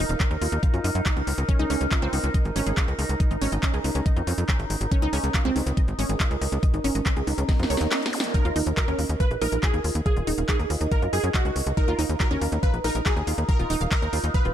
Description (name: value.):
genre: psychedelic trance.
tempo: 140 BPM.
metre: 4/4.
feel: straight.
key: unclear.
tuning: A4 = 440 Hz.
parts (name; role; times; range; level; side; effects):
overtone-sweeping drone; sustained chords; 0.0-14.5 s; Eb4 to Bb4; -32 LUFS; right 2 dB; chorus, built-in reverb, sidechain pumping.
wide unison pluck; riff; 0.0-14.5 s; C4 to F5; -30 LUFS; moving between left 2 dB and right 5 dB; auto-pan, sidechain pumping, digital delay.
tight sequencer bass; bass; 0.0-14.5 s; Eb1 to Gb2; -26 LUFS; equal; none.
techno drum kit; drums; 0.1-14.5 s; handclaps, hi-hat, snare drum; -30 LUFS; equal; none.
electronic kick drum; drums; 0.2-14.4 s; none; -22 LUFS; equal; none.
swell and zap; sound effects; 7.7-8.3 s; none; -34 LUFS; equal; none.
supersaw stab; melody; 8.3-14.5 s; Gb4 to Cb5; -30 LUFS; right 1 dB; phaser, vintage 12-bit sampler grit, sidechain pumping, digital delay.
room: digital ambience.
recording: none.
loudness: -22 LUFS.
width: side -10 dB against mid.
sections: 0.0-14.5 A section.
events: drum fill 7.5-8.3; swell 7.7-8.3.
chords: 0.0 Eb5; 1.5 Db5; 8.3 Eb5.